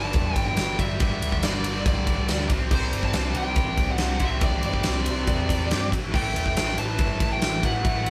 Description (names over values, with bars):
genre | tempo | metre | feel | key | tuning
hard rock | 140 BPM | 4/4 | straight | unclear | A4 = 437 Hz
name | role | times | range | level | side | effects
smooth overdriven lead guitar | melody | 0.0-8.1 s | C5 to A5 | -32 LUFS | equal | none
overdriven tonewheel organ | sustained chords | 0.0-8.1 s | G3 to E5 | -43 LUFS | equal | none
overdriven electric guitar | riff | 0.0-8.1 s | G2 to C4 | -39 LUFS | equal | none
scooped high-gain guitar | riff | 0.0-8.1 s | G2 to C4 | -38 LUFS | equal | none
tight distorted guitar | riff | 0.0-8.1 s | G2 to C4 | -35 LUFS | equal | distortion
overdriven picked electric bass | bass | 0.0-8.1 s | E1 to G2 | -31 LUFS | equal | none
huge arena drum kit | drums | 0.1-8.1 s | crash cymbal, kick drum, ride cymbal, snare drum | -27 LUFS | equal | none
room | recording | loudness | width
moderate studio reverb, RT60 0.6 s | band playing live in one room | -24 LUFS | mono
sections
0.0-8.1 A section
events
none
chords
0.0 G5; 2.5 C; 6.1 A5